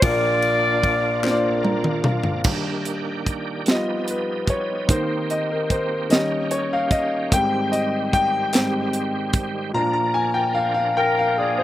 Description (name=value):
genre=slow gospel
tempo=49 BPM (dotted quarters)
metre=6/8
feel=straight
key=Eb major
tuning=A4 = 440 Hz
part: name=mellow horn section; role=melody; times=0.0-1.6, 11.0-11.6 s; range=D4 to D5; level=-20 LUFS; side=left 2 dB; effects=none
part: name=clear concert grand piano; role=accompaniment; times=0.0-11.6 s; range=Bb1 to Bb5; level=-22 LUFS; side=left 1 dB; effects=none
part: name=bright tonewheel organ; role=sustained chords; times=0.0-11.6 s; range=Eb3 to Bb4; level=-29 LUFS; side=right 5 dB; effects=slow rotary speaker, overdrive, chorus vibrato
part: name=crisp fusion drum kit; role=drums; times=0.0-9.5 s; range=crash cymbal, hi-hat, kick drum, ride cymbal, snare drum, toms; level=-21 LUFS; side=right 1 dB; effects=none
part: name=group handclap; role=percussion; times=1.2-1.6, 8.5-8.9 s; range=none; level=-30 LUFS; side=left 5 dB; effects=none
room=little or no reverb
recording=recorded outdoors, with no room sound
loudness=-19 LUFS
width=side -13 dB against mid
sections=0.0-2.5 A section; 2.5-11.6 B section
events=drum fill 1.2-2.5; grand piano fill 1.2-2.5; grand piano solo 2.5-11.6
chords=0.0 Bb; 2.5 Ebmaj7; 3.7 Gaug7; 4.9 Cm7/Eb; 6.1 Eb7; 7.3 Abmaj7; 9.8 Bb